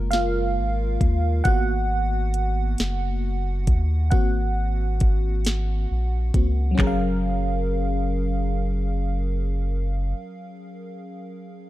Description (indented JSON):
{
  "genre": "slow six-eight R&B",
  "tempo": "45 BPM (dotted quarters)",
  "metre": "6/8",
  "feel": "straight",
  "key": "F# major",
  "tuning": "A4 = 439 Hz",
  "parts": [
    { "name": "FM electric piano with soft pad layer", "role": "accompaniment", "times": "0.0-11.7 s", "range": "F#3 to F#5", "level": "-27 LUFS", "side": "equal", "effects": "chorus" },
    { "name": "round analog bass", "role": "bass", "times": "0.0-10.1 s", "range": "F#1 to D#2", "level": "-24 LUFS", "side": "equal", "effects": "none" },
    { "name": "smooth R&B drum kit", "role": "drums", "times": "0.1-7.0 s", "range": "handclaps, hi-hat, kick drum, snare drum", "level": "-21 LUFS", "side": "equal", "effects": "none" }
  ],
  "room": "digital ambience",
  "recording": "dark, warm production",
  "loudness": "-21 LUFS",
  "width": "side -15 dB against mid",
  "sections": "0.0-6.8 A section; 6.8-9.5 B section",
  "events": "FM electric piano solo 0.0-6.8",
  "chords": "0.0 F#maj9; 1.5 G#m9; 4.1 G#7; 6.8 F#maj9",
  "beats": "0.12 | 1.45 2.79 | 4.12 5.45 | 6.79 8.12"
}